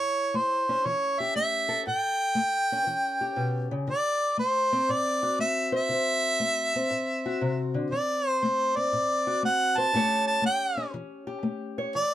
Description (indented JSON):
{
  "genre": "acoustic country blues, solo or duo",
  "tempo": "119 BPM",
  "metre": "4/4",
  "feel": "swing 67% on 8ths",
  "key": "A mixolydian",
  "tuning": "A4 = 440 Hz",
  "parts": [
    { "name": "warm harmonica", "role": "melody", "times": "0.0-12.1 s", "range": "C5 to A5", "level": "-25 LUFS", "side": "right 1 dB", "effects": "none" },
    { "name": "fingerpicked old ladder-braced acoustic guitar", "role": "accompaniment", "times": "0.0-12.1 s", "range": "A2 to C#5", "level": "-30 LUFS", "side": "left 2 dB", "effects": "none" }
  ],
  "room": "light reverb",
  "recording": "none",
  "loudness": "-24 LUFS",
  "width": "side -12 dB against mid",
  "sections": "0.0-12.1 A section",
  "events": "none",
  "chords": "0.0 A7; 3.9 D7; 7.9 D#dim7; 9.9 A7"
}